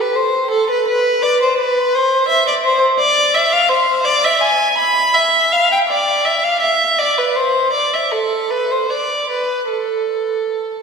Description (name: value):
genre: classical, baroque-style suite movement for unaccompanied violin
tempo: 48-57 BPM (dotted quarters)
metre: 6/8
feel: rubato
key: A minor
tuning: A4 = 440 Hz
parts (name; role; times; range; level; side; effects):
- rich violin; solo; 0.0-10.8 s; A4 to B5; -13 LUFS; equal; none
room: wet church reverb, RT60 2.9 s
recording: minimal, uncompressed stereo recording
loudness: -13 LUFS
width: side -5 dB against mid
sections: 0.0-10.8 A section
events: none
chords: none